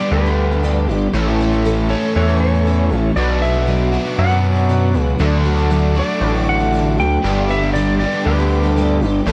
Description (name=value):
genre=rock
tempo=118 BPM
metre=4/4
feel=straight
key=unclear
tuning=A4 = 441 Hz
part: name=clean lap steel guitar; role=melody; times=0.0-9.0 s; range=B4 to G5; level=-25 LUFS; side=equal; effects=none
part: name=picked plugged-in twelve-string acoustic guitar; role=accompaniment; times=0.0-9.3 s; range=G2 to A4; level=-26 LUFS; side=equal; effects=ensemble chorus
part: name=warm studio string section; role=sustained chords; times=0.0-9.3 s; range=A4 to D6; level=-36 LUFS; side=equal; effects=none
part: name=crunchy overdriven guitar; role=riff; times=0.0-9.3 s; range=G2 to A4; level=-23 LUFS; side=equal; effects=none
part: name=gritty driven synth bass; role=bass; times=0.1-9.3 s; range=G1 to F#2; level=-19 LUFS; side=equal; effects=distortion
room=little or no reverb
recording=dry, close 1970s-style studio recording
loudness=-16 LUFS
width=mono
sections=0.0-9.3 A section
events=none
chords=0.0 G; 1.1 A; 3.2 Bm; 5.2 D; 7.2 G